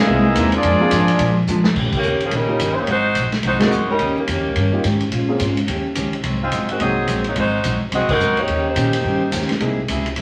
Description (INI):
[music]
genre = jazz, big band swing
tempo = 214 BPM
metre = 4/4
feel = swing 61% on 8ths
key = Eb mixolydian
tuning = A4 = 440 Hz
[part]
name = clear trumpet section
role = melody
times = 0.0-1.4 s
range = Bb3 to Fb5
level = -22 LUFS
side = equal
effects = none
[part]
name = bright trombone section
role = second line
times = 0.0-1.4 s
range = Fb3 to D4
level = -25 LUFS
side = equal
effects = none
[part]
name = picked steel-string acoustic guitar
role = accompaniment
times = 0.1-10.2 s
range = Ab2 to G#4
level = -25 LUFS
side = equal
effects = none
[part]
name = warm grand piano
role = accompaniment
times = 0.1-7.2, 9.6-9.8 s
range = Bb3 to Bb4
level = -25 LUFS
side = equal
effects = none
[part]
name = upright bass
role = bass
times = 0.1-10.2 s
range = Gb1 to D3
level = -26 LUFS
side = equal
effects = none
[part]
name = swinging big-band drum kit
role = drums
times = 0.4-10.2 s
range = crash cymbal, hi-hat, kick drum, ride cymbal, snare drum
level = -26 LUFS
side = equal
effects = none
[part]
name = mellow saxophone section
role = melody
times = 2.0-9.5 s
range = Eb3 to Eb5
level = -22 LUFS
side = equal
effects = none
[sound]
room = wet club reverb, RT60 0.6 s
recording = vinyl crackle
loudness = -19 LUFS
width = mono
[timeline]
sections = 0.0-1.8 A section; 1.8-10.2 B section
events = drum fill 1.5; band accent 1.9, 3.6, 8.1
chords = 0.1 C7alt; 0.6 Bb7; 1.8 Eb7; 2.9 Ab7; 4.0 Eb7; 5.1 Bbm7; 5.7 Eb7; 6.2 Ab7; 8.5 Eb7; 9.6 C7alt